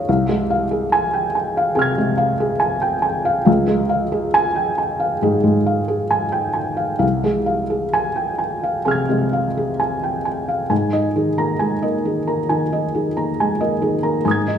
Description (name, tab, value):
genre	neoclassical minimalist piano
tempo	64-72 BPM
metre	4/4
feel	rubato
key	unclear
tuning	A4 = 440 Hz
part	felt-muted upright piano	solo	0.0-14.6 s	C2 to Ab6	-17 LUFS	equal	none
room	moderate recital hall reverb, RT60 1.5 s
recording	recorded in a church or concert hall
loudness	-17 LUFS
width	side -8 dB against mid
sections	0.0-10.7 A section; 10.7-14.6 B section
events	none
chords	0.1 Fm/C; 3.5 Db; 7.0 Fm/C; 10.7 Absus2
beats	| 0.07 0.93 1.78 2.62 | 3.47 4.34 5.22 6.11 | 7.02 7.95 8.88 9.80 | 10.71 11.60 12.48 13.37 | 14.24